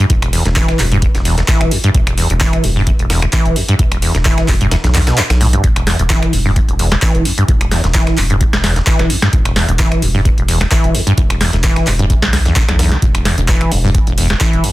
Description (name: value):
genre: acid house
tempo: 130 BPM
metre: 4/4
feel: swing 54% on 16ths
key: E minor pentatonic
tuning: A4 = 440 Hz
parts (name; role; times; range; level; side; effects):
- acid bass, saw; riff; 0.0-14.7 s; E1 to E3; -16 LUFS; equal; tube saturation, wide subtle chorus, vintage 12-bit sampler grit, sidechain pumping, dub echo
- round analog bass; bass; 0.1-14.6 s; E1 to B1; -17 LUFS; equal; sidechain pumping
- booming analog drum machine; drums; 0.1-14.7 s; finger snaps, handclaps, hi-hat, snare drum; -18 LUFS; equal; none
- breakbeat sampler-style drum kit; drums; 0.1-14.7 s; hi-hat, snare drum; -27 LUFS; right 1 dB; none
- electronic kick drum; drums; 0.1-14.5 s; none; -15 LUFS; equal; none
room: light reverb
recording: dense, heavily limited modern master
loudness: -11 LUFS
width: side -17 dB against mid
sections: 0.0-14.7 A section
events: kick drops out 4.7-5.6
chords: 0.0 E5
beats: | 0.10 0.56 1.02 1.48 | 1.95 2.41 2.87 3.33 | 3.79 4.25 4.71 5.18 | 5.64 6.10 6.56 7.02 | 7.48 7.95 8.41 8.87 | 9.33 9.79 10.25 10.71 | 11.18 11.64 12.10 12.56 | 13.02 13.48 13.95 14.41